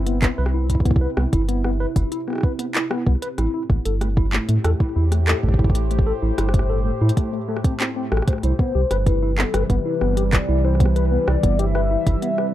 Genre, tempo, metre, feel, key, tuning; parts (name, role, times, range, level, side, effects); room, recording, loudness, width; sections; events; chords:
IDM; 95 BPM; 4/4; straight; C major; A4 = 439 Hz
warbly tape-like pad; sustained chords; 0.0-12.5 s; A2 to C5; -28 LUFS; equal; chorus, built-in reverb, phaser
round analog bass; bass; 0.0-12.2 s; G1 to A2; -20 LUFS; equal
tine electric piano; arpeggios; 0.1-12.5 s; A3 to C5; -27 LUFS; left 3 dB; overdrive, fast stereo tremolo, digital delay
organic electronic drum kit; drums; 0.1-12.5 s; handclaps, hi-hat, rim click; -26 LUFS; equal; overdrive
electronic kick drum; drums; 0.2-12.2 s; -19 LUFS; equal; overdrive
warbly nostalgic lead; melody; 8.4-12.5 s; A4 to E5; -24 LUFS; left 3 dB; analog chorus
light reverb; rough home demo mix; -18 LUFS; side -13 dB against mid
0.0-12.5 A section
0.0 Cmaj7; 3.4 Am7; 8.4 Cmaj7